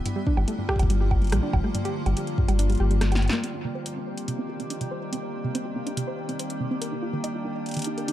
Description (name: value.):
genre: IDM.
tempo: 142 BPM.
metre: 4/4.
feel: straight.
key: C minor.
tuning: A4 = 441 Hz.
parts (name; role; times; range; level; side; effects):
icy glass pad; sustained chords; 0.0-8.1 s; D3 to G4; -31 LUFS; left 1 dB; chorus, built-in reverb.
soft round pluck; arpeggios; 0.1-8.1 s; G2 to Eb5; -30 LUFS; right 2 dB; chorus, analog delay.
electro analog drum machine; drums; 0.1-8.1 s; bongos, hi-hat, rim click, snare drum; -32 LUFS; right 1 dB; analog delay.
electronic kick drum; drums; 0.3-2.5 s; none; -25 LUFS; equal; none.
warm sub bass; bass; 0.4-3.3 s; G1 to Bb1; -22 LUFS; equal; none.
room: light reverb, digital ambience.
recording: echo-heavy mix.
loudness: -24 LUFS.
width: side -13 dB against mid.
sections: 0.0-3.4 A section; 3.4-8.1 B section.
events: kick drops out 2.6-3.4; drum fill 3.0-3.4.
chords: 0.1 Gm7; 3.4 Cm7; 6.8 Ebmaj7.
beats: | 0.06 0.48 0.90 1.32 | 1.75 2.17 2.59 3.01 | 3.44 3.86 4.28 4.70 | 5.13 5.55 5.97 6.39 | 6.82 7.24 7.66 8.08.